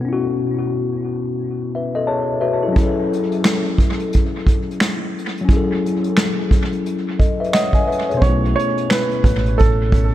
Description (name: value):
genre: lo-fi hip hop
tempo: 88 BPM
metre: 4/4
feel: swing 62% on 16ths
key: unclear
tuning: A4 = 442 Hz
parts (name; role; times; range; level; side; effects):
- mellow tine electric piano; accompaniment; 0.0-10.1 s; B2 to A5; -20 LUFS; left 3 dB; cassette tape, dub echo
- vintage brush drum kit; drums; 2.8-10.1 s; finger snaps, hi-hat, kick drum, snare drum; -17 LUFS; right 1 dB; dub echo
- felt-muted upright piano; melody; 7.5-10.1 s; A4 to D#5; -21 LUFS; right 4 dB; dub echo
- deep dub fingered electric bass; bass; 8.2-10.1 s; A1 to B1; -19 LUFS; right 1 dB; none
room: moderate plate reverb, RT60 2.5 s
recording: echo-heavy mix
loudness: -16 LUFS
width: side -13 dB against mid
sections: 0.0-8.2 A section; 8.2-10.1 B section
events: tine electric piano fill 1.7-2.8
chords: 0.0 B9sus4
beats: | 0.04 0.72 1.40 2.08 | 2.76 3.45 4.13 4.81 | 5.49 6.17 6.86 7.54 | 8.22 8.90 9.58